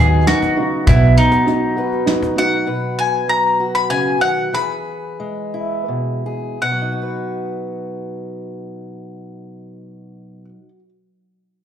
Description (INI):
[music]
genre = acoustic folk duo or small band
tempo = 78-100 BPM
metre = 3/4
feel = straight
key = B major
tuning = A4 = 442 Hz
[part]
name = bowl-back mandolin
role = melody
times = 0.0-10.4 s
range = D#4 to B5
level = -18 LUFS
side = left 2 dB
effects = plate reverb, slapback echo
[part]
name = fingerpicked acoustic archtop guitar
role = accompaniment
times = 0.0-10.9 s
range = B2 to B4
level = -23 LUFS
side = left 1 dB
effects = plate reverb, slapback echo
[part]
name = felt-muted upright piano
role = arpeggios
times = 0.0-2.7 s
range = B3 to F#4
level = -20 LUFS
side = right 4 dB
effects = plate reverb, slapback echo
[part]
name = upright bass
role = bass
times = 0.0-1.2 s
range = B1 to D#2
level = -14 LUFS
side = equal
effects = none
[part]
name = soft brush drum kit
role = drums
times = 0.3-2.2 s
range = hi-hat, kick drum, snare drum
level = -19 LUFS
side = equal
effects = none
[part]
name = cajon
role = percussion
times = 0.3-2.4 s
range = none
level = -18 LUFS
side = left 1 dB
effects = slapback echo
[sound]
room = moderate club reverb, RT60 0.5 s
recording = live gig heard through the venue's PA, club reverb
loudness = -15 LUFS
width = side -9 dB against mid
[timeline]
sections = 0.0-2.7 A section; 2.7-6.6 B section; 6.6-11.2 C section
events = slowing down 2.7-6.6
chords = 0.0 B/D#; 0.9 B; 4.5 E; 6.6 B